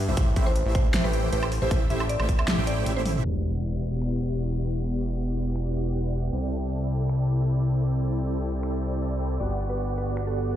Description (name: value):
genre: future bass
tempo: 156 BPM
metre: 4/4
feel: half-time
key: E minor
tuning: A4 = 440 Hz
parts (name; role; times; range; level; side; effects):
- mallet-like synth pluck; melody; 0.0-3.2, 9.4-10.5 s; A4 to E5; -33 LUFS; right 1 dB; chorus, sidechain pumping, digital delay
- fat analog bass; bass; 0.0-10.6 s; E1 to C2; -26 LUFS; equal; sidechain pumping
- supersaw chords; riff; 0.1-10.6 s; A3 to G5; -31 LUFS; right 1 dB; phaser, sidechain pumping, low-pass filter, digital delay
- big-room dance drum kit; drums; 0.2-10.4 s; crash cymbal, finger snaps, hi-hat, snare drum, toms, woodblock; -30 LUFS; equal; overdrive, small room ambience
- electronic kick drum; drums; 0.2-2.4 s; none; -24 LUFS; equal; overdrive, small room ambience
- impact; sound effects; 3.2-4.8 s; none; -36 LUFS; left 1 dB; none
room: little or no reverb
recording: played on a big sound system in a bare room, stone room reverb, low-pass filter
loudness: -24 LUFS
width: side -11 dB against mid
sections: 0.0-3.2 A section; 3.2-10.6 B section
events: drop 0.0-3.2; drum fill 3.0; impact 3.2-4.8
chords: 0.0 Am7; 3.2 Em9; 6.3 C69; 9.4 Gmaj7